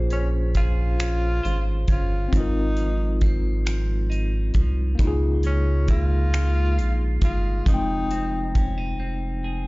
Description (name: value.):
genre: slow six-eight R&B.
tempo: 45 BPM (dotted quarters).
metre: 6/8.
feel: straight.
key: Bb dorian.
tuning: A4 = 441 Hz.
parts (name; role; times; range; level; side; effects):
clean electric guitar; second line; 0.0-9.7 s; Ab2 to C5; -35 LUFS; right 2 dB; none.
tine electric piano; accompaniment; 0.0-9.7 s; Ab3 to G5; -30 LUFS; left 3 dB; medium tremolo.
rubbery square bass; bass; 0.0-9.7 s; F1 to Db2; -23 LUFS; equal; none.
breathy tenor saxophone; melody; 0.1-8.6 s; Db4 to F4; -31 LUFS; left 1 dB; none.
damped 70s drum kit; drums; 0.1-8.8 s; finger snaps, hi-hat, kick drum; -21 LUFS; equal; none.
room: small room ambience.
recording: played on a big sound system in a bare room, large studio reverb, nothing above 7.5 kHz.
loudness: -20 LUFS.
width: side -22 dB against mid.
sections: 0.0-9.7 A section.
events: none.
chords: 0.0 Bbm9; 2.3 Ab6; 5.0 Db6; 7.7 Fm7.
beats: 1.00 | 2.33 3.66 | 5.00 6.33 | 7.66 9.00.